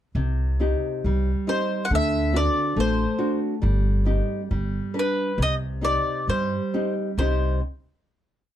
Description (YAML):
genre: fado-style ballad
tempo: 68 BPM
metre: 2/4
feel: rubato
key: C minor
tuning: A4 = 439 Hz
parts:
  - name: upright bass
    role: bass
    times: 0.1-7.6 s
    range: G1 to G2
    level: -24 LUFS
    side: equal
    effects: none
  - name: nylon-string guitar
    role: accompaniment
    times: 0.2-7.6 s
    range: C3 to B4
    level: -26 LUFS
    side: equal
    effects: none
  - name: bowl-back mandolin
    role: melody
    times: 1.5-7.6 s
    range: B4 to F#5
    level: -25 LUFS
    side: left 1 dB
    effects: none
room: little or no reverb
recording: dark, warm production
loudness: -21 LUFS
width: side -11 dB against mid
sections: 0.1-7.2 A section; 7.2-8.6 final chord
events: none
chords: 0.1 Cm; 1.9 D7; 3.6 Cm/G; 4.5 G; 5.4 Cm